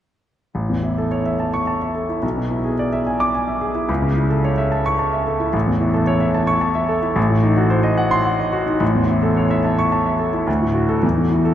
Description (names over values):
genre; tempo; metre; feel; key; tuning
classical, virtuoso piano study; 109 BPM; 3/4; rubato; A major; A4 = 440 Hz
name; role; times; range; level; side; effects
clear grand piano; solo; 0.5-11.5 s; A1 to D6; -16 LUFS; equal; none
room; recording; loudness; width
wet cathedral reverb, RT60 7.0 s; in a vast, echoing space; -16 LUFS; side -11 dB against mid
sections
0.6-11.5 A section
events
none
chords
0.6 A; 2.2 E7/B; 3.9 A/C#; 5.5 A; 7.2 Adim7; 8.8 A; 10.5 D; 11.0 A5/E